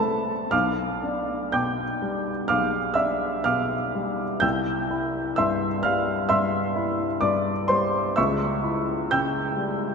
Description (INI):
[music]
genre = classical, romantic character piece for solo piano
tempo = 54-66 BPM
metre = 4/4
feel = rubato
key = C major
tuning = A4 = 440 Hz
[part]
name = warm upright piano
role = solo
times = 0.0-9.9 s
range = B1 to G6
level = -22 LUFS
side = equal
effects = none
[sound]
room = wet cathedral reverb, RT60 5.0 s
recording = in a vast, echoing space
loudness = -22 LUFS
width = side -5 dB against mid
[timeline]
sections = 0.0-9.9 A section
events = none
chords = 0.0 Dm7/C; 0.5 G7/B; 4.4 C; 8.2 C#dim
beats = | 0.52 1.54 2.50 3.46 | 4.43 5.39 6.31 7.23 | 8.17 9.11